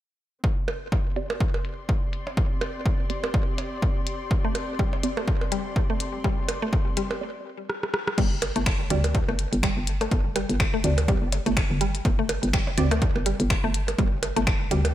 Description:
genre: minimal techno.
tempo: 124 BPM.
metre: 4/4.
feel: swing 57% on 16ths.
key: unclear.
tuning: A4 = 440 Hz.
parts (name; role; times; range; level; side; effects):
electronic kick drum; drums; 0.4-14.6 s; none; -25 LUFS; equal; overdrive.
muted studio string section; texture; 0.4-7.2 s; C4 to C6; -36 LUFS; left 2 dB; sidechain pumping.
minimal click drum kit; drums; 0.7-14.9 s; crash cymbal, finger snaps, hi-hat, rim click; -30 LUFS; left 2 dB; low-pass filter on hats, low-pass filter on snare, low-pass filter on cymbals.
electronic percussion blips and toms; percussion; 0.7-14.9 s; none; -31 LUFS; right 2 dB; overdrive, tape echo.
filtered dub chord stab; stabs; 1.2-14.8 s; C4 to D5; -32 LUFS; right 3 dB; phaser, tape echo.
mallet-like synth pluck; riff; 4.4-14.8 s; G3 to A3; -30 LUFS; equal; chorus, phaser, sidechain pumping, tape echo.
hollow knocking FM bass; bass; 8.2-14.9 s; G1 to D2; -27 LUFS; equal; sidechain pumping.
room: light reverb, digital ambience.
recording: none.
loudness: -22 LUFS.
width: side -13 dB against mid.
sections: 0.4-8.2 A section; 8.2-14.9 B section.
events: fade-in on string section 0.4-8.2; filter sweep on drum 0.4-8.2; break 7.2-8.2; drum fill 7.7-8.2.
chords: 0.4 Gsus4; 8.2 G5.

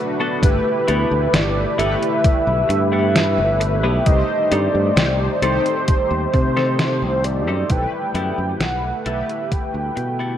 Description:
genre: vaporwave.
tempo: 66 BPM.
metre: 4/4.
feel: straight.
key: G major.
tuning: A4 = 440 Hz.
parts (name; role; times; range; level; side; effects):
mellow synth brass; accompaniment; 0.0-10.4 s; A3 to C5; -24 LUFS; equal; analog chorus, tape echo.
warbly tape-like pad; sustained chords; 0.0-10.4 s; B2 to G4; -32 LUFS; right 1 dB; none.
clean electric guitar; riff; 0.2-10.4 s; B3 to B4; -27 LUFS; left 2 dB; lush chorus, vintage 12-bit sampler grit.
warm velvety synth lead; melody; 0.4-10.4 s; B4 to G5; -22 LUFS; equal; chorus, tape echo.
modern bright fingered electric bass; bass; 0.4-10.4 s; G1 to C3; -21 LUFS; equal; none.
detuned 8-bit digital drum machine; drums; 0.4-10.2 s; hi-hat, snare drum; -22 LUFS; equal; gated reverb.
electronic kick drum; drums; 0.4-9.7 s; none; -17 LUFS; equal; none.
room: light reverb.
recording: cassette tape.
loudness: -16 LUFS.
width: side -10 dB against mid.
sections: 0.0-10.4 A section.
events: fade-out 5.3-10.4.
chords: 0.4 G69; 4.1 Cm6; 7.7 G69/B.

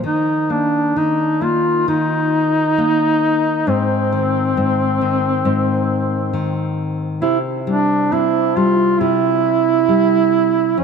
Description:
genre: children's music, lullaby.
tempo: 67 BPM.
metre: 4/4.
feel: rubato.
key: unclear.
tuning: A4 = 440 Hz.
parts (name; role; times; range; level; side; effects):
nylon-string guitar; accompaniment; 0.0-10.8 s; F2 to C4; -20 LUFS; left 3 dB; none.
warm duduk; melody; 0.1-10.8 s; C4 to F4; -16 LUFS; right 2 dB; ping-pong delay.
room: wet plate reverb, RT60 3.1 s.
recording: dreamy mix soaked in reverb.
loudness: -14 LUFS.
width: side -6 dB against mid.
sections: 0.0-10.8 A section.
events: none.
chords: 0.0 Eb5; 3.7 Ab; 7.2 C.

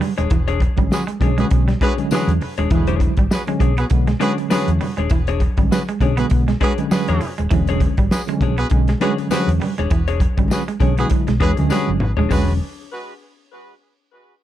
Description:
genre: funk.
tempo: 100 BPM.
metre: 4/4.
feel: swing 56% on 16ths.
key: E mixolydian.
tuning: A4 = 437 Hz.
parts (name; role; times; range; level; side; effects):
clean electric guitar; accompaniment; 0.0-12.5 s; D4 to C#5; -27 LUFS; left 11 dB; spring reverb.
electric guitar at the edge of break-up; riff; 0.0-12.5 s; E3 to B3; -24 LUFS; right 6 dB; harmonic tremolo.
mellow tine electric piano; stabs; 0.0-12.6 s; D3 to E4; -22 LUFS; right 2 dB; medium stereo tremolo.
warm soul drum kit; drums; 0.0-12.5 s; hi-hat, kick drum, snare drum, toms; -20 LUFS; equal; none.
congas; percussion; 0.0-12.6 s; none; -29 LUFS; right 4 dB; none.
hollow-body short-scale fingered electric bass; bass; 0.2-12.6 s; D#1 to E2; -20 LUFS; equal; none.
clear horn section; second line; 0.9-12.5 s; G#3 to B4; -26 LUFS; right 1 dB; tape echo.
tambourine; percussion; 0.9-12.6 s; none; -36 LUFS; left 8 dB; none.
room: little or no reverb.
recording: dark, warm production.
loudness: -16 LUFS.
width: side -12 dB against mid.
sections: 0.0-12.3 A section; 12.3-14.4 B section.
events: drum fill 11.7-12.3.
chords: 0.0 E13.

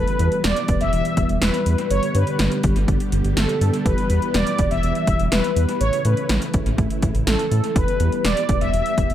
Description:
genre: synth-pop.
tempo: 123 BPM.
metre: 4/4.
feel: straight.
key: E dorian.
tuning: A4 = 440 Hz.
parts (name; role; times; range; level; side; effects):
mellow synth brass; melody; 0.0-9.1 s; A4 to E5; -24 LUFS; left 1 dB; chorus, tape echo.
string machine, cellos; sustained chords; 0.0-9.1 s; C#3 to G4; -25 LUFS; equal; ensemble chorus.
round analog bass; bass; 0.0-9.1 s; E1 to A2; -21 LUFS; equal; none.
80s electronic pad drums; drums; 0.1-9.1 s; hi-hat, kick drum, snare drum; -22 LUFS; equal; overdrive, tape echo.
room: light reverb, digital ambience.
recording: echo-heavy mix.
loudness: -17 LUFS.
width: side -11 dB against mid.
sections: 0.0-9.1 A section.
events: none.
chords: 0.0 Em; 1.9 G; 3.9 Em; 5.8 A; 7.8 Em.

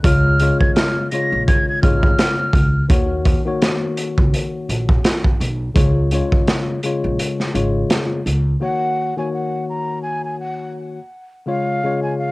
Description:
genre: hip hop, boom-bap hip-hop.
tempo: 84 BPM.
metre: 4/4.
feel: swing 57% on 16ths.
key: Eb minor.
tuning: A4 = 440 Hz.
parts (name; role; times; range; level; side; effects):
tine electric piano; accompaniment; 0.0-12.3 s; Db3 to Db5; -22 LUFS; left 2 dB; high-pass filter, low-pass filter, cassette tape.
upright bass; bass; 0.0-8.5 s; Ab1 to Eb2; -19 LUFS; equal; none.
crunchy breakbeat drum kit; drums; 0.0-8.5 s; hi-hat, kick drum, snare drum; -17 LUFS; equal; none.
breathy mellow silver concert flute; melody; 0.1-2.9, 8.6-12.3 s; F5 to Bb6; -22 LUFS; equal; high-pass filter, low-pass filter, cassette tape.
room: light reverb.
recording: home recording on cassette.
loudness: -16 LUFS.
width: side -22 dB against mid.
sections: 0.0-8.6 A section; 8.6-12.3 B section.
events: kick muted 7.2-8.6.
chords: 0.0 Db; 2.9 Ebm7; 5.8 Db; 8.6 Ebm7; 11.5 Db.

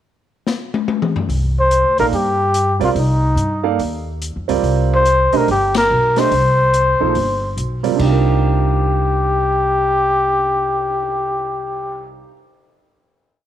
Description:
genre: modal jazz.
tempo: 144 BPM.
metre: 4/4.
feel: swing 64% on 8ths.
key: C minor.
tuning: A4 = 440 Hz.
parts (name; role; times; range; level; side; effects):
open jazz drum kit; drums; 0.5-11.2 s; crash cymbal, cymbal swell, hi-hat, kick drum, ride cymbal, snare drum, toms; -24 LUFS; left 5 dB; none.
upright bass; bass; 1.3-12.2 s; G1 to G2; -19 LUFS; equal; none.
breathy trumpet; melody; 1.6-12.1 s; Eb4 to C5; -16 LUFS; left 2 dB; none.
clear concert grand piano; accompaniment; 2.0-12.4 s; C3 to F5; -21 LUFS; right 10 dB; none.
room: light reverb.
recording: 1960s-style stereo.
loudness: -14 LUFS.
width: side -11 dB against mid.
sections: 0.0-1.3 pickup bar; 1.3-8.0 A section; 8.0-11.3 final chord.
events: drum fill 0.5-1.3; band accent 5.7.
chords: 0.0 N.C.; 1.3 Cm11.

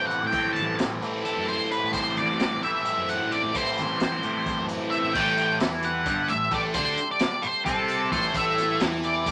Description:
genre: psychedelic rock.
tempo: 262 BPM (eighths).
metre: 7/8.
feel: straight.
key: A dorian.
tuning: A4 = 440 Hz.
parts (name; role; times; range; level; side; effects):
octave-fuzz lead guitar; melody; 0.0-9.3 s; A4 to A5; -28 LUFS; equal; distortion.
combo organ; sustained chords; 0.0-9.3 s; G3 to C5; -40 LUFS; equal; none.
cranked stack guitar; riff; 0.0-9.3 s; G2 to E4; -30 LUFS; equal; overdrive, phaser.
crunchy breakbeat drum kit; drums; 0.1-9.3 s; crash cymbal, hi-hat, kick drum, snare drum; -33 LUFS; equal; none.
tambourine; percussion; 0.1-9.1 s; none; -53 LUFS; equal; none.
fuzz fingered electric bass; bass; 0.2-9.3 s; G1 to A2; -38 LUFS; equal; overdrive.
room: moderate studio reverb, RT60 0.5 s.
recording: none.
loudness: -25 LUFS.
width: mono.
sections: 0.0-5.1 A section; 5.1-9.3 B section.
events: none.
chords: 0.0 Am7.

